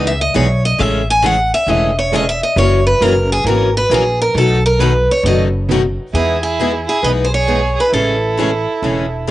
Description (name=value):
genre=acoustic string swing (jazz manouche)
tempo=135 BPM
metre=4/4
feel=swing 64% on 8ths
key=E major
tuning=A4 = 440 Hz
part: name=picked steel-string acoustic guitar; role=melody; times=0.0-9.3 s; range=G#4 to G#5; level=-16 LUFS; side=right 1 dB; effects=cassette tape
part: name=picked plugged-in steel-string acoustic guitar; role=accompaniment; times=0.0-9.3 s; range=B2 to A#4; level=-22 LUFS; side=right 5 dB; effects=cassette tape
part: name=picked steel-string acoustic guitar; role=accompaniment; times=0.0-9.3 s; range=B2 to G#4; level=-19 LUFS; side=left 5 dB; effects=cassette tape
part: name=upright bass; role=bass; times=0.0-9.3 s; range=E1 to E2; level=-18 LUFS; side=equal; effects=none
part: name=warm violin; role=second line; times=6.1-9.3 s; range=E4 to B4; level=-20 LUFS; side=right 5 dB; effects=cassette tape
room=light reverb, small room ambience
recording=home recording on cassette, nothing above 10.9 kHz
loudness=-12 LUFS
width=side -15 dB against mid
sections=0.0-6.1 A section; 6.1-9.3 B section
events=steel-string acoustic guitar solo 0.0-6.1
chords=0.0 Emaj7; 0.8 Amaj7; 2.6 F#7; 4.4 B7; 6.1 Emaj7; 7.9 Amaj7